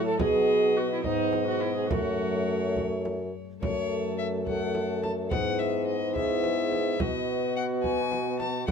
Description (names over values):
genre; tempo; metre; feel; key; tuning
classical, renaissance-style consort dance; 71 BPM (dotted quarters); 6/8; straight; F# dorian; A4 = 445 Hz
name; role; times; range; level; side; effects
rich violin; melody; 0.0-8.7 s; C#5 to A5; -34 LUFS; left 6 dB; none
rich viola; second line; 0.0-8.7 s; D#4 to A4; -30 LUFS; right 3 dB; none
concert harp; accompaniment; 0.0-8.7 s; E2 to B4; -34 LUFS; left 6 dB; none
warm trombone; accompaniment; 0.0-8.7 s; A3 to B3; -33 LUFS; left 3 dB; none
warm bassoon; bass; 0.0-8.7 s; E2 to B2; -30 LUFS; right 2 dB; none
frame drum; percussion; 0.2-8.7 s; none; -33 LUFS; right 2 dB; none
room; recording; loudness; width
moderate stone room reverb, RT60 1.1 s; minimal, uncompressed stereo recording; -25 LUFS; side -6 dB against mid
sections
0.0-3.6 A section; 3.6-8.7 B section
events
none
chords
0.2 B; 1.9 F#m; 5.3 E/G#; 7.0 B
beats
| 0.19 1.04 | 1.90 2.77 | 3.62 4.47 | 5.31 6.16 | 7.00 7.84 | 8.68